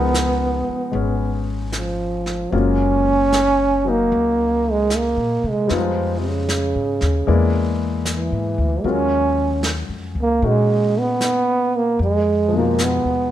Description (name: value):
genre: jazz ballad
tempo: 76 BPM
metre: 4/4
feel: swing 69% on 8ths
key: Eb minor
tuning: A4 = 441 Hz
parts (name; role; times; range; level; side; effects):
- breathy trombone; melody; 0.0-13.3 s; C3 to Db4; -19 LUFS; right 2 dB; plate reverb
- warm baby grand piano; accompaniment; 0.0-13.3 s; Cb3 to D5; -25 LUFS; left 6 dB; none
- upright bass; bass; 0.0-13.3 s; Gb1 to C3; -23 LUFS; left 1 dB; none
- vintage brush drum kit; drums; 0.1-13.3 s; brushed snare drum, hi-hat, snare drum; -28 LUFS; right 1 dB; none
room: light reverb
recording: none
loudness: -17 LUFS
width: side -12 dB against mid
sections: 0.0-13.3 A section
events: none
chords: 0.0 Db13; 2.5 Gbmaj7; 5.7 Fm7b5; 7.3 E7#11; 8.8 Ebm11; 12.0 Fm7b5